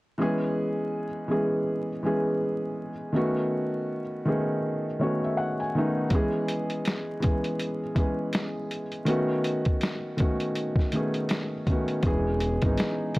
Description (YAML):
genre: lo-fi hip hop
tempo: 81 BPM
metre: 4/4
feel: swing 59% on 16ths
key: E major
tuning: A4 = 439 Hz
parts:
  - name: felt-muted upright piano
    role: accompaniment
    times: 0.2-13.2 s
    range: D#3 to G#5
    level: -26 LUFS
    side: equal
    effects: low-pass filter
  - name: lo-fi sampler-style drum kit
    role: drums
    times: 6.1-13.2 s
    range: hi-hat, kick drum, snare drum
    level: -27 LUFS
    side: equal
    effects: overdrive
  - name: smooth gliding synth bass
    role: bass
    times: 12.0-13.2 s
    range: E1 to G#1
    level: -28 LUFS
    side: equal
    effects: none
room: little or no reverb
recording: dry, gritty hardware recording, vinyl crackle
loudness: -25 LUFS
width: side -20 dB against mid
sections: 0.2-12.0 A section; 12.0-13.2 B section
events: felt piano fill 4.6-6.1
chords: 0.2 E6; 3.1 B9; 6.1 E6; 9.1 B9; 12.0 E6